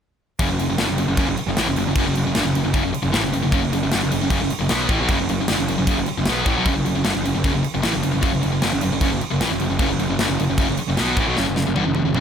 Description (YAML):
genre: heavy metal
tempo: 153 BPM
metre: 4/4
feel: straight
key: F# minor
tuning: A4 = 439 Hz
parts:
  - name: high-gain distorted guitar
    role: riff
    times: 0.4-12.2 s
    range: F#2 to B3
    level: -23 LUFS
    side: left 9 dB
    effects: distortion
  - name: sludgy distorted guitar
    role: riff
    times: 0.4-12.2 s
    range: F#2 to B3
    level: -23 LUFS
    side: right 9 dB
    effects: overdrive
  - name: fuzz picked electric bass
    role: bass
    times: 0.4-12.2 s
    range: F#1 to B1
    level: -26 LUFS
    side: equal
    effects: overdrive
  - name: tight metal drum kit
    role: drums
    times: 0.4-12.2 s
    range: crash cymbal, kick drum, snare drum, toms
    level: -23 LUFS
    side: equal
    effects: none
room: little or no reverb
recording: none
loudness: -18 LUFS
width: side -8 dB against mid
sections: 0.4-12.2 A section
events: drum fill 11.4-12.2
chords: 0.4 F#m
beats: | 0.40 0.79 1.18 1.57 | 1.96 2.35 2.75 3.14 | 3.53 3.92 4.31 4.70 | 5.10 5.49 5.88 6.27 | 6.66 7.06 7.45 7.84 | 8.23 8.62 9.02 9.41 | 9.80 10.19 10.58 10.98 | 11.37 11.76 12.15